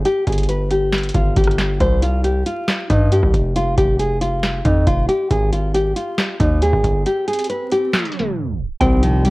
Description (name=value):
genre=hip hop, trap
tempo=137 BPM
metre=4/4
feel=half-time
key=unclear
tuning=A4 = 435 Hz
part: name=nylon-string guitar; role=melody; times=0.0-9.3 s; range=F3 to C5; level=-19 LUFS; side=equal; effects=none
part: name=distorted 808-style bass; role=bass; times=0.0-9.3 s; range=F1 to G2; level=-18 LUFS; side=equal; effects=distortion
part: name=booming analog drum machine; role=drums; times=0.1-9.3 s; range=handclaps, hi-hat, kick drum, rim click, snare drum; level=-20 LUFS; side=equal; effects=none
part: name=swell and impact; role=sound effects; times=7.3-9.3 s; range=none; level=-30 LUFS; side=right 1 dB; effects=none
part: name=mallet-like synth pluck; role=second line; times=8.8-9.3 s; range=G5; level=-24 LUFS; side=right 1 dB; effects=chorus, digital delay
part: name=sweeping resonant pad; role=sustained chords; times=8.8-9.3 s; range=C3 to G4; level=-21 LUFS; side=right 1 dB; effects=chorus
room=light reverb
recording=worn, warbling old tape, cassette tape, vinyl crackle, warbly pitch drift, tape stop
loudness=-15 LUFS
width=side -21 dB against mid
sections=0.0-8.8 A section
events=break 7.1-8.8; swell 7.3-8.8; tape stop 7.9-8.8; impact 8.8-9.3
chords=0.1 N.C.; 1.8 C5; 3.6 Fsus2; 5.3 Ab5; 7.1 N.C.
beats=| 0.05 0.49 0.93 1.36 | 1.80 2.24 2.68 3.12 | 3.56 3.99 4.43 4.87 | 5.31 5.75 6.18 6.62 | 7.06 7.50 7.93 8.37 | 8.81 9.25